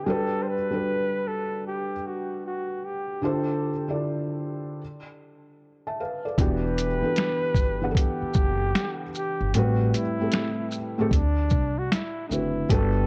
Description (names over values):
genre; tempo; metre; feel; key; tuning
lo-fi hip hop; 76 BPM; 4/4; swing 66% on 16ths; E minor; A4 = 440 Hz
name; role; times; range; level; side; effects
breathy flugelhorn; melody; 0.0-13.1 s; D4 to C5; -32 LUFS; equal; none
felt-muted upright piano; accompaniment; 0.0-13.1 s; A2 to A5; -30 LUFS; equal; cassette tape
upright bass; bass; 6.4-13.1 s; E1 to D2; -28 LUFS; equal; none
lo-fi sampler-style drum kit; drums; 6.4-12.9 s; finger snaps, hi-hat, kick drum, shaker, snare drum; -26 LUFS; equal; overdrive, vintage 12-bit sampler grit
room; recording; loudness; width
light reverb, small room ambience; cassette tape; -26 LUFS; mono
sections
0.0-6.4 A section; 6.4-13.1 B section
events
none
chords
0.1 Gmaj7; 3.2 Dm11; 4.8 N.C.; 6.4 Em9; 9.5 Am9; 11.1 D13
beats
| 0.06 0.85 1.64 2.43 | 3.22 4.01 4.80 5.59 | 6.38 7.17 7.96 8.75 | 9.54 10.32 11.11 11.90 | 12.69